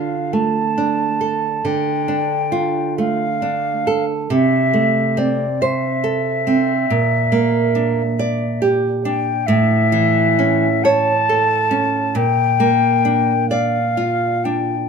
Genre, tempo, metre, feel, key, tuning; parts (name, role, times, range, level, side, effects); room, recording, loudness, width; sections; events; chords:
romantic duo for flute and classical guitar; 46 BPM (dotted quarters); 12/8; rubato; D minor; A4 = 440 Hz
mellow concert flute; melody; 0.0-14.9 s; D5 to A5; -19 LUFS; left 3 dB
nylon-string guitar; accompaniment; 0.0-14.9 s; A2 to D5; -17 LUFS; right 3 dB
moderate small room reverb, RT60 0.5 s; -15 LUFS; side -6 dB against mid
0.0-14.9 A section
0.0 Dm; 4.3 Am/C; 6.9 Gm/Bb; 9.5 A; 12.2 Bb